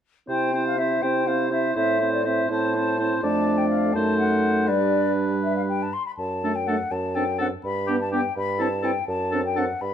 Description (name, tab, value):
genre	quick classical-period movement for wind quintet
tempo	82 BPM (dotted quarters)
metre	6/8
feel	straight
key	C major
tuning	A4 = 440 Hz
part	mellow concert flute	melody	0.3-9.9 s	D5 to C6	-27 LUFS	left 4 dB	none
part	warm oboe	second line	0.3-9.7 s	G4 to D5	-28 LUFS	left 1 dB	none
part	warm French horn	accompaniment	0.3-9.7 s	G3 to C4	-27 LUFS	left 1 dB	none
part	warm clarinet	accompaniment	0.3-9.7 s	D4 to E4	-28 LUFS	right 8 dB	none
part	mellow bassoon	bass	0.3-9.9 s	F2 to C3	-28 LUFS	right 2 dB	none
room	moderate large studio reverb, RT60 1.1 s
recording	dark, warm production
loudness	-21 LUFS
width	side -9 dB against mid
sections	0.3-9.9 A section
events	none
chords	0.3 C; 1.8 Am; 3.2 Dm/F; 3.9 F#dim7; 4.7 G; 6.2 D/F#; 6.9 D7/F#; 7.6 G; 8.4 Am7/G; 9.1 D7/F#